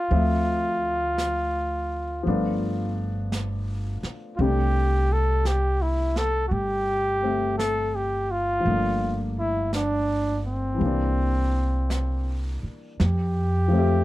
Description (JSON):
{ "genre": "jazz ballad", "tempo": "56 BPM", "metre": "4/4", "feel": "swing 66% on 8ths", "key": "C major", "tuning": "A4 = 441 Hz", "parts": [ { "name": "breathy trumpet", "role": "melody", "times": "0.0-14.0 s", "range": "C4 to A4", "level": "-26 LUFS", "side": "equal", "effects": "none" }, { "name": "warm baby grand piano", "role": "accompaniment", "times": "0.0-14.0 s", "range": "C3 to E5", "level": "-29 LUFS", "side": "left 3 dB", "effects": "none" }, { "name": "upright bass", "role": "bass", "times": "0.1-14.0 s", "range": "G1 to F2", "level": "-25 LUFS", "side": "equal", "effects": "none" }, { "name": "jazz brush drum kit", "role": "drums", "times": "0.1-14.0 s", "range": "brushed snare drum, hi-hat, snare drum", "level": "-37 LUFS", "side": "right 2 dB", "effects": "none" } ], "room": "light reverb", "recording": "dark, warm production", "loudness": "-22 LUFS", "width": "side -16 dB against mid", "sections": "0.0-13.0 A section; 13.0-14.0 B section", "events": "trumpet solo 13.0-14.0", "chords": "0.1 Dm7; 2.3 G9; 4.4 C6; 8.6 Gm7; 10.8 C7; 13.0 Fmaj9", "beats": "| 0.11 1.19 2.25 3.32 | 4.38 5.45 6.51 7.58 | 8.65 9.72 10.80 11.89 | 12.99" }